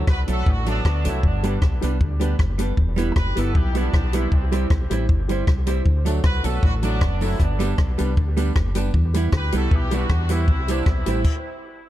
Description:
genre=ska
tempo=156 BPM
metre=4/4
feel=straight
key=D mixolydian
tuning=A4 = 441 Hz
part: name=archtop guitar, miked and amplified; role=accompaniment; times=0.0-11.2 s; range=F#3 to E4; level=-28 LUFS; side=right 6 dB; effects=none
part: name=dark upright piano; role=stabs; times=0.0-11.2 s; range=D4 to C5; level=-30 LUFS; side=left 3 dB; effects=dub echo
part: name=clear horn section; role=melody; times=0.1-11.6 s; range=G3 to B4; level=-31 LUFS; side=right 1 dB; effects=dub echo
part: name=fingered electric bass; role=bass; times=0.1-11.2 s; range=E1 to E2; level=-22 LUFS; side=equal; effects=none
part: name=compact cocktail drum kit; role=drums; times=0.1-11.3 s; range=crash cymbal, hi-hat, kick drum, rim click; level=-20 LUFS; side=equal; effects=none
part: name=tambourine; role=percussion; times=6.1-11.1 s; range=none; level=-44 LUFS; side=left 4 dB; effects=none
room=little or no reverb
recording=dark, warm production, faint mains hum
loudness=-18 LUFS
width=side -14 dB against mid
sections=0.0-11.9 A section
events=stop 11.2-11.9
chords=0.0 D; 1.2 G; 2.8 Em; 4.3 C; 5.9 D; 7.4 G; 8.9 Em; 10.5 C

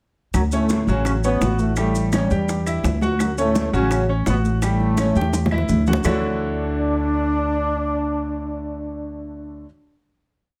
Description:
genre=latin, salsa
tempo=168 BPM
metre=4/4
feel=straight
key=D major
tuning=A4 = 440 Hz
part: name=clear trombone section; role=melody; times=0.3-9.7 s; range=F#2 to D4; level=-26 LUFS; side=equal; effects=none
part: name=upright bass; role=bass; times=0.3-9.6 s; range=A1 to E2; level=-25 LUFS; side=equal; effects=none
part: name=bongos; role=percussion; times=0.3-6.1 s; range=none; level=-29 LUFS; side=equal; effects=none
part: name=claves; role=percussion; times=0.3-6.1 s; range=none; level=-37 LUFS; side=equal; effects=none
part: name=congas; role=percussion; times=0.3-6.1 s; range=none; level=-30 LUFS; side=equal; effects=none
part: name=maracas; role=percussion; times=0.3-6.1 s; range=none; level=-39 LUFS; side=equal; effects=none
part: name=bright baby grand piano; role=accompaniment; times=0.5-9.7 s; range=D3 to G5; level=-28 LUFS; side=equal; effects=none
room=light reverb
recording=none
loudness=-21 LUFS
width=mono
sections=0.3-6.1 montuno (vamp); 6.1-8.9 final chord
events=drum fill 5.0-6.1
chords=0.3 Dmaj7; 1.8 A7; 3.2 Dmaj7; 4.6 A7; 6.1 Dmaj9

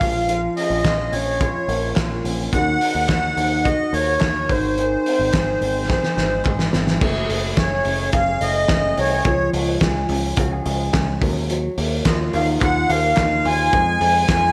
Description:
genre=jangly indie pop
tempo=107 BPM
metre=4/4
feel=straight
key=unclear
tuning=A4 = 435 Hz
part: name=accordion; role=melody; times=0.0-14.5 s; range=C5 to Ab5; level=-23 LUFS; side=equal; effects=light tremolo tuning, slapback echo
part: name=electric guitar through a small old amp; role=arpeggios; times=0.0-14.5 s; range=Eb3 to Ab4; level=-27 LUFS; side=equal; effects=slapback echo
part: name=picked electric bass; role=bass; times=0.0-14.5 s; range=Gb1 to F2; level=-27 LUFS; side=equal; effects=none
part: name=loose indie drum kit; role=drums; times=0.0-14.4 s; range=crash cymbal, hi-hat, kick drum, snare drum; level=-24 LUFS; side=equal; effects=none
part: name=group handclap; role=percussion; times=0.9-6.6, 12.1-14.4 s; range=none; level=-40 LUFS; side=equal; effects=none
room=wet lush hall reverb, RT60 1.6 s, small room reverb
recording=big arena sound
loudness=-19 LUFS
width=mono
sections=0.0-7.0 A section; 7.0-14.5 B section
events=drum fill 5.9-7.0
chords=0.0 Bbm; 2.5 Ebm; 4.5 Ab; 7.0 Gbmadd9; 9.3 Db; 11.2 Ebmadd9; 13.7 Fm

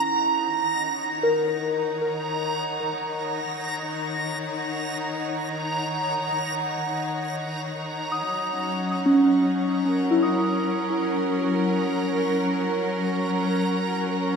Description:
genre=ambient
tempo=free time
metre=none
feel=none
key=unclear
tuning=A4 = 440 Hz
part: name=bright symphonic string section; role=sustained chords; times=0.0-14.4 s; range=D#3 to A#5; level=-26 LUFS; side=left 1 dB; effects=none
part: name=soft synth bell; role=arpeggios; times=0.0-14.4 s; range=C#4 to D#6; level=-25 LUFS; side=equal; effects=chorus, tape echo
part: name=backwards swelling texture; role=texture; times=0.0-14.4 s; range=A#5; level=-29 LUFS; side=right 3 dB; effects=built-in reverb
room=wet concert hall reverb, RT60 2.1 s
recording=dark, warm production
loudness=-22 LUFS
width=side -5 dB against mid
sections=0.0-14.4 A section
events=fade-in on string section 0.0-14.4; fade-out on synth texture 0.0-14.4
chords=0.0 D#m7; 8.3 F#

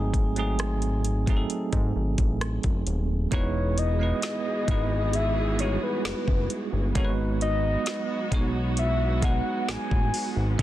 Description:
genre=contemporary R&B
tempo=66 BPM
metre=4/4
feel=straight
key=unclear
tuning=A4 = 440 Hz
part: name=bell-like tine electric piano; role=accompaniment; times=0.0-10.6 s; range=F#3 to C#5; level=-30 LUFS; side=right 4 dB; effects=medium stereo tremolo
part: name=fat analog bass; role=bass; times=0.0-10.6 s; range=D#1 to G#2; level=-27 LUFS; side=equal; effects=none
part: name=smooth R&B drum kit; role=drums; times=0.1-10.6 s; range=hi-hat, kick drum, rim click, snare drum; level=-27 LUFS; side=equal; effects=vintage 12-bit sampler grit
part: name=soft octave-layered synth lead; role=melody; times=3.3-10.4 s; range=B4 to G#5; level=-30 LUFS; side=left 2 dB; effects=chorus, digital delay
part: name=warm studio string section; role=sustained chords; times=3.3-10.6 s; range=E3 to G#4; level=-35 LUFS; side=equal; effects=none
room=little or no reverb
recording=dense, heavily limited modern master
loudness=-23 LUFS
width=side -14 dB against mid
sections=0.0-3.3 A section; 3.3-10.6 B section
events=none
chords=0.0 G#7b9; 3.3 Emaj7; 7.0 G#m7

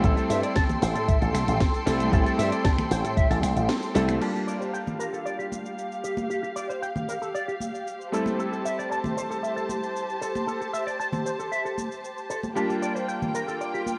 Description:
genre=nu-disco, nu disco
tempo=115 BPM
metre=4/4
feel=straight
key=G dorian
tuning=A4 = 439 Hz
part: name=bright electric grand piano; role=accompaniment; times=0.0-14.0 s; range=G3 to A5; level=-33 LUFS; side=equal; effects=sidechain pumping, cassette tape, tape echo
part: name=clear symphonic string section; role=sustained chords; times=0.0-14.0 s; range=Bb3 to C6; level=-34 LUFS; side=equal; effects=sidechain pumping, low-pass filter, cassette tape
part: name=electric guitar with an envelope filter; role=riff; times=0.0-13.8 s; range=G4 to A5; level=-34 LUFS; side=equal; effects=analog chorus, low-pass filter, cassette tape, tape echo
part: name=slap bass with an envelope filter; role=bass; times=0.0-4.2 s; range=A1 to A2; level=-28 LUFS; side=equal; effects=none
part: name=electronic kick drum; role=drums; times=0.0-3.3 s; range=none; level=-26 LUFS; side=equal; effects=cassette tape
part: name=house drum kit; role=drums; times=0.0-14.0 s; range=crash cymbal, finger snaps, hi-hat, shaker, snare drum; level=-37 LUFS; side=equal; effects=cassette tape
part: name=congas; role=percussion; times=0.7-14.0 s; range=none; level=-36 LUFS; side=equal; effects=none
room=light reverb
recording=home recording on cassette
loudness=-27 LUFS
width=mono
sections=0.0-4.2 A section; 4.2-14.0 B section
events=kick drops out 3.7-4.2; band accent 3.7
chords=0.0 Am7; 4.2 Gm7; 8.1 Am7; 12.6 Gm7

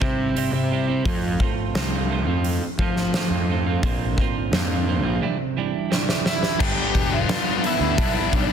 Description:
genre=quiet-loud alternative rock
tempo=86 BPM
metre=4/4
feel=straight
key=G mixolydian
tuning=A4 = 443 Hz
part: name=twelve-string electric guitar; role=arpeggios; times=0.0-8.5 s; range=G2 to F4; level=-27 LUFS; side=right 9 dB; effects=none
part: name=fuzz picked electric bass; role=bass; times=0.0-8.5 s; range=E1 to F3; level=-24 LUFS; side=left 1 dB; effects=overdrive
part: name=huge arena drum kit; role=drums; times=0.0-8.5 s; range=crash cymbal, hi-hat, kick drum, snare drum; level=-24 LUFS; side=equal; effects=none
part: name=smooth overdriven lead guitar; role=melody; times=6.3-8.5 s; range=D4 to G5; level=-25 LUFS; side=right 2 dB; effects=slapback echo
part: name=tight distorted guitar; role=riff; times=6.6-8.5 s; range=G2 to D4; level=-24 LUFS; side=left 14 dB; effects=distortion
room=light reverb, small room ambience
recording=dense, heavily limited modern master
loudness=-20 LUFS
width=side -8 dB against mid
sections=0.0-6.6 A section; 6.6-8.5 B section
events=drum fill 5.9-6.6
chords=0.0 C; 1.0 F; 3.8 Bbadd9; 5.2 Cadd9; 6.6 G

